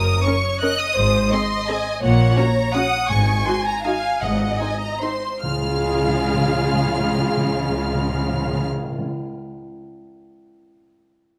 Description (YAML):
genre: classical, orchestral ballroom waltz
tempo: 138-182 BPM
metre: 3/4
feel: rubato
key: Db major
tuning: A4 = 440 Hz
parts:
  - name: rich studio violin section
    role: melody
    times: 0.0-8.7 s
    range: Gb5 to Gb6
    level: -28 LUFS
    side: equal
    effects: none
  - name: rich studio violin section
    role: second line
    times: 0.0-8.7 s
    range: Ab4 to Ab5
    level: -26 LUFS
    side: equal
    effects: none
  - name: rich studio cello section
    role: bass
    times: 0.0-8.7 s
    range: Gb2 to Db3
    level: -27 LUFS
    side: equal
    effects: none
  - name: warm studio double bass section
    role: bass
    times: 0.0-8.7 s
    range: Gb1 to Db2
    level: -27 LUFS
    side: equal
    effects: none
  - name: rich studio viola section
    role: accompaniment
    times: 0.3-8.7 s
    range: Ab3 to Bb4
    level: -30 LUFS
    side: equal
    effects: none
  - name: timpani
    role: percussion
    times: 3.1-9.1 s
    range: Ab2 to Db3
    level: -28 LUFS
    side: equal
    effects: none
room: moderate scoring stage reverb, RT60 1.7 s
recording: none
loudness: -20 LUFS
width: mono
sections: 0.0-5.4 A section; 5.4-7.9 B section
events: slowing down 2.6-5.4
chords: 0.0 Ebm7/Gb; 1.0 Ab; 2.0 Gb/Bb; 3.1 Ab7sus4; 4.2 Ab7; 5.4 Db